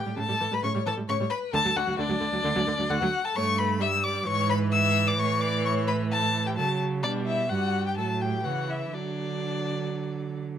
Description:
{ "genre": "quick classical-period movement for string quartet", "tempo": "130 BPM", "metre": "4/4", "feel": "uneven beats, rubato", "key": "D major", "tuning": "A4 = 440 Hz", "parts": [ { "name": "rich violin", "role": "melody", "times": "0.0-10.4 s", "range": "D4 to E5", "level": "-33 LUFS", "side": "left 10 dB", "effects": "none" }, { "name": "warm violin", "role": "second line", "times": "0.0-10.4 s", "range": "D5 to E6", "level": "-28 LUFS", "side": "left 3 dB", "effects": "none" }, { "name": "rich viola", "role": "accompaniment", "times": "0.1-10.6 s", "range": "C#3 to A3", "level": "-32 LUFS", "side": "right 3 dB", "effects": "none" }, { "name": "warm cello", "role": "bass", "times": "0.1-10.6 s", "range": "D2 to D3", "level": "-29 LUFS", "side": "right 4 dB", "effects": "none" } ], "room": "light reverb", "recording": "close, detailed microphones", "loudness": "-24 LUFS", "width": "side -9 dB against mid", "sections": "0.0-10.6 A section", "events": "none", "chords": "0.0 A7; 1.5 D; 3.4 G69; 4.3 E6/G#; 5.2 A; 7.0 G/B; 8.0 A; 8.9 D" }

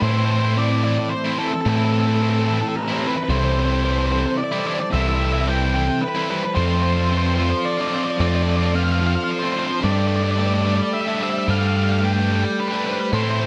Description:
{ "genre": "post-rock", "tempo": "110 BPM", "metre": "3/4", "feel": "straight", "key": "unclear", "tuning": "A4 = 440 Hz", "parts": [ { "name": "octave-fuzz lead guitar", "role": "melody", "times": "0.0-13.5 s", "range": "A4 to G5", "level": "-27 LUFS", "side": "equal", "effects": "distortion, slapback echo" }, { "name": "dark studio string section", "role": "sustained chords", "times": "0.0-13.5 s", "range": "A4 to D6", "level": "-39 LUFS", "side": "equal", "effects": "none" }, { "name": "twelve-string electric guitar", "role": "arpeggios", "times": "0.0-13.5 s", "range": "A2 to E4", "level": "-29 LUFS", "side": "equal", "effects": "harmonic tremolo, slapback echo" }, { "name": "distorted electric guitar", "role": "riff", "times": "0.0-13.5 s", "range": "A2 to G4", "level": "-30 LUFS", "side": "equal", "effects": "overdrive" }, { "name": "tight distorted guitar", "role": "riff", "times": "0.0-13.5 s", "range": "A2 to G4", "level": "-30 LUFS", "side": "equal", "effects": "distortion" }, { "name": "overdriven picked electric bass", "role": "bass", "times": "0.0-13.5 s", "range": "C2 to A2", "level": "-22 LUFS", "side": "equal", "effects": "none" }, { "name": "vibraphone with hard mallets", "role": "arpeggios", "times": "3.3-13.5 s", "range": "A4 to C5", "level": "-34 LUFS", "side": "equal", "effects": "slapback echo" } ], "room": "light reverb", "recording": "dark, warm production", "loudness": "-20 LUFS", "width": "mono", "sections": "0.0-13.5 A section", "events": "none", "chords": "0.0 Amadd9; 3.3 C6; 6.6 F6; 9.8 Gsus2" }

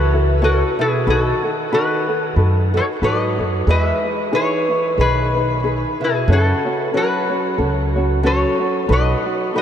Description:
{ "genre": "Hawaiian", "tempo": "92 BPM", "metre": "4/4", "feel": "swing 57% on 8ths", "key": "E major", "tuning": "A4 = 440 Hz", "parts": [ { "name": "metal-body resonator slide guitar", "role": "melody", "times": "0.0-9.6 s", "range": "E4 to E5", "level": "-20 LUFS", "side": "left 2 dB", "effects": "diffuse ambient delay" }, { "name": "fingerpicked acoustic archtop guitar", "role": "second line", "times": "0.0-9.6 s", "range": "B2 to G#3", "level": "-24 LUFS", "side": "right 3 dB", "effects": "none" }, { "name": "ukulele", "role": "accompaniment", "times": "0.0-9.6 s", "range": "C#4 to C#5", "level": "-22 LUFS", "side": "left 1 dB", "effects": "none" }, { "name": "upright bass", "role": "bass", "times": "0.0-9.1 s", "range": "B1 to G#2", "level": "-18 LUFS", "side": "equal", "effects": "none" } ], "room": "wet huge ambient reverb, RT60 8.8 s", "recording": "dreamy mix soaked in reverb", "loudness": "-15 LUFS", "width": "side -9 dB against mid", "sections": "0.0-9.6 A section", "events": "none", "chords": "0.0 F#m7; 1.1 B7; 3.7 Emaj7; 6.3 F#m; 8.9 B7" }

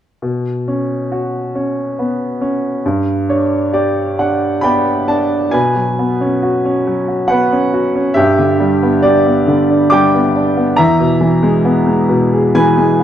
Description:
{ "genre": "classical, lyrical solo piano", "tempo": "69 BPM", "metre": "3/4", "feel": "rubato", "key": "unclear", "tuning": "A4 = 439 Hz", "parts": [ { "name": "clear baby grand piano", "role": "solo", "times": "0.2-13.0 s", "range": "E2 to D6", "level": "-12 LUFS", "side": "equal", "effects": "none" } ], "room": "moderate scoring stage reverb, RT60 1.8 s", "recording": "dark, warm production", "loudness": "-12 LUFS", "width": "side -10 dB against mid", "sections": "0.2-5.5 A section; 5.5-13.0 B section", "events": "grand piano fill 2.8-5.5", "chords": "0.2 Bsus2; 2.8 G; 5.5 Bsus2; 8.2 G; 10.8 E" }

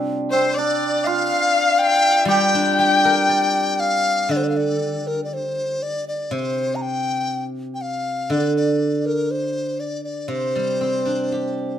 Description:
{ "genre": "chinese traditional, Chinese chamber ensemble", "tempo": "60 BPM", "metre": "2/4", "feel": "rubato", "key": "G yu mode", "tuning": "A4 = 442 Hz", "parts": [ { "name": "hammered dulcimer", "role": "second line", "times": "0.0-5.4 s", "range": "C4 to G4", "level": "-24 LUFS", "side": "right 4 dB", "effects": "none" }, { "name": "steel-string zither", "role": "accompaniment", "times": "0.0-11.8 s", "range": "C3 to D5", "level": "-24 LUFS", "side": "right 1 dB", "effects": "none" }, { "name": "mellow hollow dizi", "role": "melody", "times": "0.3-11.8 s", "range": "Bb4 to Bb5", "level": "-21 LUFS", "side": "left 2 dB", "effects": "none" }, { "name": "dark erhu", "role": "second line", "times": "0.3-3.8 s", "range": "C5 to G5", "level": "-21 LUFS", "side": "left 5 dB", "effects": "none" } ], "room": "light reverb", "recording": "none", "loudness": "-18 LUFS", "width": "side -10 dB against mid", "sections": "0.0-4.3 A section; 4.3-11.8 B section", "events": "none", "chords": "none" }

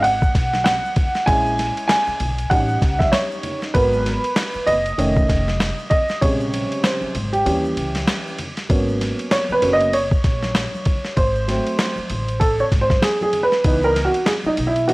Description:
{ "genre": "hip hop, jazz-hop", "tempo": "97 BPM", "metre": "4/4", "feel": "swing 59% on 16ths", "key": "G# minor", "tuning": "A4 = 440 Hz", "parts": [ { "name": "dark upright piano", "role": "accompaniment", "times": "0.0-14.9 s", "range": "B#2 to G#5", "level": "-19 LUFS", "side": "right 1 dB", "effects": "none" }, { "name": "upright bass", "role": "bass", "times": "0.0-14.9 s", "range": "F1 to D#2", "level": "-25 LUFS", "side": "equal", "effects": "none" }, { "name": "boom bap sampler-style drum kit", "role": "drums", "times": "0.0-14.9 s", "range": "hi-hat, kick drum, ride cymbal, snare drum", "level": "-21 LUFS", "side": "equal", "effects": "none" }, { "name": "egg shaker and congas", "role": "percussion", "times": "0.1-14.9 s", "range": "none", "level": "-35 LUFS", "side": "left 1 dB", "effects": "none" } ], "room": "small room ambience", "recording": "dry, gritty hardware recording, vinyl crackle", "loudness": "-17 LUFS", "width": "side -22 dB against mid", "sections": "0.0-8.7 A section; 8.7-14.9 B section", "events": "upright piano solo 0.0-8.7, 8.7-14.9; kick muted 7.5-8.7", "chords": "0.0 B5; 1.3 A#m7b5; 2.5 A7#11; 3.7 G#m7; 5.0 Faug7; 6.2 A#m9; 7.5 D#7b9; 8.7 G#m11; 11.2 G#7b9; 13.6 C#m9" }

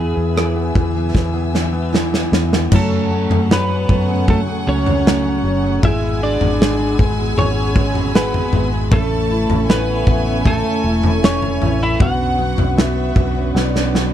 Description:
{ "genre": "pop ballad", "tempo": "78 BPM", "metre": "4/4", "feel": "straight", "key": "F# minor", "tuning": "A4 = 445 Hz", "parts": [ { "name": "twelve-string electric guitar", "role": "melody", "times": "0.0-14.1 s", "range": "A3 to F#5", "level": "-21 LUFS", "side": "equal", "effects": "none" }, { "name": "clear concert grand piano", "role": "accompaniment", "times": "0.0-14.1 s", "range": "E3 to E4", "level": "-24 LUFS", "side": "left 6 dB", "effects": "none" }, { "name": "warm studio string section", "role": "sustained chords", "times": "0.0-14.1 s", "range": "A3 to E6", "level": "-30 LUFS", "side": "left 2 dB", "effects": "none" }, { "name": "picked steel-string acoustic guitar", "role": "arpeggios", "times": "0.0-14.1 s", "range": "F#2 to B4", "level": "-26 LUFS", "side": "right 11 dB", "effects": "none" }, { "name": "vintage muted fingered electric bass", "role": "bass", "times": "0.0-14.1 s", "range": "E1 to F#2", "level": "-21 LUFS", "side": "equal", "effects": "none" }, { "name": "modern studio drum kit", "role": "drums", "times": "0.4-14.1 s", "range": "crash cymbal, kick drum, rim click, snare drum, toms", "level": "-18 LUFS", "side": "equal", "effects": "none" }, { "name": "warm studio violin section", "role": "second line", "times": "2.7-14.1 s", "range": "D5 to A5", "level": "-29 LUFS", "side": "right 1 dB", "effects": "none" } ], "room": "studio reverb", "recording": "none", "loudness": "-14 LUFS", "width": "side -11 dB against mid", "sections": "0.0-2.7 A section; 2.7-14.1 B section", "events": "drum fill 1.1-2.7, 13.5-14.1", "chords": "0.0 E; 2.7 F#madd9; 5.8 Eadd9/G#; 8.9 Aadd9; 12.0 Bmadd9" }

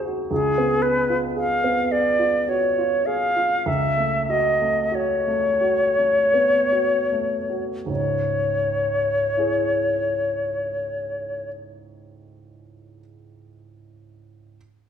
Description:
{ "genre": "classical, romantic duo for flute and grand piano", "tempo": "37-58 BPM", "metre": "3/4", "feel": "rubato", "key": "C# minor", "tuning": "A4 = 445 Hz", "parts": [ { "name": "bright concert flute", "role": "melody", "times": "0.0-11.5 s", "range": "G#4 to E#5", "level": "-20 LUFS", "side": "left 2 dB", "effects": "none" }, { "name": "warm baby grand piano", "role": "accompaniment", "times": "0.0-14.6 s", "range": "C#2 to C#5", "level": "-27 LUFS", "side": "right 3 dB", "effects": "none" } ], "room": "wet recital hall reverb, RT60 1.3 s", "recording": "minimal, uncompressed stereo recording", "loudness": "-19 LUFS", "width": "side -8 dB against mid", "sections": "0.0-7.9 A section; 7.9-12.3 B section", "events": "slowing down 0.0-7.9", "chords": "0.3 C#7; 3.7 F#m/C#; 7.9 C#m" }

